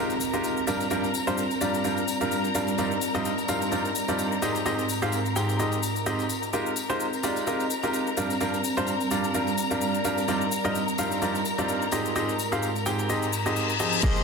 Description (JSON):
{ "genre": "piano house", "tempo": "128 BPM", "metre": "4/4", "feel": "swing 56% on 16ths", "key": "F dorian", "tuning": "A4 = 439 Hz", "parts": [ { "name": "warm studio string section", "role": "sustained chords", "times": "0.0-14.2 s", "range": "Bb4 to C6", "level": "-31 LUFS", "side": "left 2 dB", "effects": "sidechain pumping" }, { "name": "clear baby grand piano", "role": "riff", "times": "0.0-14.2 s", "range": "G2 to G5", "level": "-27 LUFS", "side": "right 1 dB", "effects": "sidechain pumping, ping-pong delay" }, { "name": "downlifter, reverse cymbal and impact", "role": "sound effects", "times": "0.0-2.8, 13.3-14.2 s", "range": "none", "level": "-31 LUFS", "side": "left 4 dB", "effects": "none" }, { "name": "warbly tape-like pad", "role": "texture", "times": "0.0-14.0 s", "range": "Ab2 to Eb5", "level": "-31 LUFS", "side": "right 1 dB", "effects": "chorus, built-in reverb, sidechain pumping" }, { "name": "house drum kit", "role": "drums", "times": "0.1-14.2 s", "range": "crash cymbal, hi-hat, shaker", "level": "-36 LUFS", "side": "left 7 dB", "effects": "none" }, { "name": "tambourine", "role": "percussion", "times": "0.1-14.0 s", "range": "none", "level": "-39 LUFS", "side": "left 6 dB", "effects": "none" }, { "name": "electronic kick drum", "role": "drums", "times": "14.0-14.1 s", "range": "none", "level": "-24 LUFS", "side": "equal", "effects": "none" }, { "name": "hi-hat", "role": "drums", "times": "14.0-14.2 s", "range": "none", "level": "barely audible", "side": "none", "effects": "none" } ], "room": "wet plate reverb, RT60 2.0 s", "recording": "dense, heavily limited modern master", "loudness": "-24 LUFS", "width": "side -5 dB against mid", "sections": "0.0-14.0 A section", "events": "reverse cymbal 13.3-14.0; impact 14.0", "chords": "0.0 Fm11; 0.7 Gm7; 2.8 Cm11/G; 4.4 Fm11; 8.2 Gm7; 10.3 Cm11/G; 11.9 Abmaj7" }